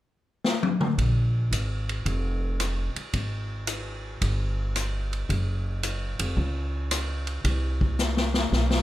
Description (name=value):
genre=jazz, big band swing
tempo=111 BPM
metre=4/4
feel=swing 68% on 8ths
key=Bb minor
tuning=A4 = 440 Hz
part: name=swinging big-band drum kit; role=drums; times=0.4-8.8 s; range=hi-hat, kick drum, ride cymbal, rim click, snare drum, toms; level=-28 LUFS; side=left 2 dB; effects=none
part: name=upright bass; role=bass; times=1.0-8.8 s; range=F1 to Db2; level=-26 LUFS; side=equal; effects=none
room=light reverb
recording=none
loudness=-24 LUFS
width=side -14 dB against mid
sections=1.0-8.8 A section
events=drum fill 0.4-1.0, 8.0-8.8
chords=none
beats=0.45 | 0.98 1.52 2.06 2.60 | 3.14 3.68 4.21 4.75 | 5.29 5.83 6.37 6.91 | 7.45 7.99 8.52